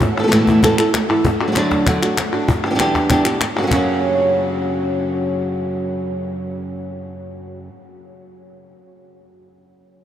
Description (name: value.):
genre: flamenco.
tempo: 195 BPM.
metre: 4/4.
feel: straight.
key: F# phrygian dominant.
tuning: A4 = 440 Hz.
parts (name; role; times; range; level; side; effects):
flamenco guitar; melody; 0.0-7.7 s; F#2 to A4; -18 LUFS; equal; none.
flamenco guitar; stabs; 0.0-7.7 s; E2 to F#4; -24 LUFS; right 3 dB; none.
cajon; percussion; 0.0-3.8 s; none; -23 LUFS; left 2 dB; none.
palmas hand claps; percussion; 0.0-3.8 s; none; -24 LUFS; left 3 dB; none.
room: wet huge ambient reverb, RT60 8.1 s.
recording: in a vast, echoing space.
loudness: -15 LUFS.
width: side -10 dB against mid.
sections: 0.0-3.7 A section; 3.7-6.2 B section.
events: none.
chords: 0.0 Asus2; 1.2 D; 2.5 Em7; 3.7 F#.